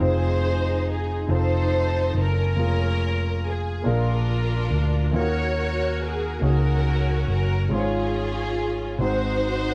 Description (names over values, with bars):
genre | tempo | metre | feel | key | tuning
slow gospel | 47 BPM (dotted quarters) | 6/8 | straight | unclear | A4 = 440 Hz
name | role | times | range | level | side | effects
warm studio string section | melody | 0.0-9.7 s | Db4 to Db5 | -29 LUFS | equal | none
dark concert grand piano | accompaniment | 0.0-9.7 s | Ab2 to Db5 | -31 LUFS | equal | none
hollow-body short-scale picked electric bass | bass | 0.0-9.7 s | F1 to Eb2 | -26 LUFS | equal | none
room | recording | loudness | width
moderate studio reverb, RT60 0.7 s | band playing live in one room | -23 LUFS | mono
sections
0.0-9.7 A section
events
none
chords
0.0 Fm7; 1.3 F7; 2.6 Bbm7/F; 3.9 Bb7; 5.1 Ebm7; 7.7 Db/Ab; 9.0 Ab7